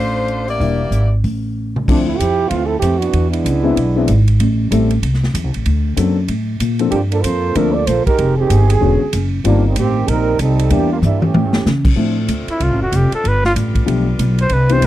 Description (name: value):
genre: jazz, big band swing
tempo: 190 BPM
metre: 4/4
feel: swing 62% on 8ths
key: D minor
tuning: A4 = 440 Hz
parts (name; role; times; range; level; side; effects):
- clear saxophone section; melody; 0.0-1.1 s; A3 to D5; -20 LUFS; left 2 dB; none
- upright bass; bass; 0.0-14.9 s; E1 to C#3; -16 LUFS; equal; none
- swinging big-band drum kit; drums; 0.3-14.9 s; crash cymbal, hi-hat, kick drum, ride cymbal, snare drum, toms; -20 LUFS; equal; none
- warm concert grand piano; accompaniment; 0.6-14.9 s; D3 to A4; -19 LUFS; left 7 dB; none
- warm trombone section; second line; 1.9-4.2, 6.9-11.7 s; Eb3 to D5; -18 LUFS; right 5 dB; none
- clear saxophone section; sustained chords; 12.0-14.9 s; C3 to B4; -28 LUFS; equal; none
- warm trumpet; melody; 12.5-14.9 s; E4 to C5; -17 LUFS; equal; none
room: little or no reverb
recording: dry, close 1970s-style studio recording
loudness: -13 LUFS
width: side -14 dB against mid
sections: 0.0-1.9 A section; 1.9-12.0 B section; 12.0-14.9 C section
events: drum fill 1.6-1.9, 11.0-11.7; trombone section solo 1.9-12.0; trumpet solo 12.0-14.9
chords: 0.0 Dm7; 0.6 Em7b5; 1.2 N.C.; 1.9 Dm9; 3.1 E7b13; 4.4 Am7; 5.7 D7b13; 6.9 Gm11; 8.2 Fm9; 8.8 E13; 9.4 Eb6; 10.7 Em7b5; 11.3 A7; 12.0 Dm7; 13.2 G7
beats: 0.30 | 0.61 0.93 1.25 1.56 | 1.88 2.19 2.51 2.82 | 3.14 3.46 3.77 4.08 | 4.40 4.72 5.03 5.35 | 5.66 5.98 6.29 6.61 | 6.92 7.24 7.55 7.87 | 8.18 8.50 8.81 9.13 | 9.45 9.76 10.08 10.39 | 10.71 11.03 11.34 11.66 | 11.97 12.29 12.61 12.92 | 13.24 13.55 13.87 14.19 | 14.50 14.82